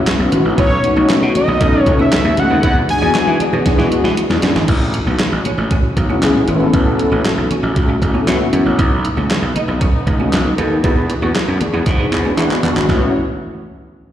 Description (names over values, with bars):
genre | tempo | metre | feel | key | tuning
early-eighties boogie funk | 117 BPM | 4/4 | straight | A major | A4 = 440 Hz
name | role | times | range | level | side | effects
fat analog lead | melody | 0.0-3.4 s | C#5 to G#5 | -17 LUFS | left 1 dB | slapback echo, plate reverb
mellow synth brass | accompaniment | 0.0-13.1 s | G#3 to B4 | -17 LUFS | left 2 dB | chorus, plate reverb, slapback echo
dark studio string section | sustained chords | 0.0-13.1 s | D#3 to C#5 | -25 LUFS | equal | plate reverb
clean electric guitar | riff | 0.0-13.0 s | G#3 to F#4 | -27 LUFS | right 6 dB | ensemble chorus, slapback echo
crisp 8-bit digital drum machine | drums | 0.1-13.0 s | crash cymbal, handclaps, hi-hat, kick drum, snare drum | -17 LUFS | equal | none
congas | percussion | 0.1-13.1 s | none | -25 LUFS | left 2 dB | none
gritty slap bass | bass | 0.2-13.1 s | G#1 to E3 | -17 LUFS | equal | overdrive
room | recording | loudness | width
light reverb | live gig heard through the venue's PA, recital hall reverb | -12 LUFS | side -11 dB against mid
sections
0.0-4.7 A section; 4.7-12.9 B section; 12.9-14.1 C section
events
drum fill 3.7-4.7, 11.9-12.9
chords
0.0 A6; 0.6 B9; 2.6 E9; 4.7 A6; 8.8 B9; 10.8 E9; 12.9 A6